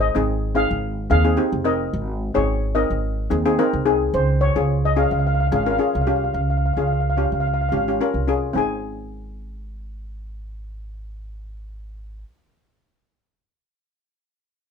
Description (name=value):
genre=calypso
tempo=109 BPM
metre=4/4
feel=swing 54% on 16ths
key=Ab major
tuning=A4 = 442 Hz
part: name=steel pan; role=melody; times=0.0-12.2 s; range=Ab4 to Ab5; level=-24 LUFS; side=left 2 dB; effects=none
part: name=upright bass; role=bass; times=0.0-12.2 s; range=F1 to Eb2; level=-23 LUFS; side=right 1 dB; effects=none
part: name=steel pan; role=accompaniment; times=0.1-12.2 s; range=C4 to Bb4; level=-23 LUFS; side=left 2 dB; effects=none
room=light reverb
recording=minimal, uncompressed stereo recording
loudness=-18 LUFS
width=side -6 dB against mid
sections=0.0-8.6 A section; 8.6-10.8 B section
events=none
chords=0.0 Ab; 4.1 Db; 8.6 Ab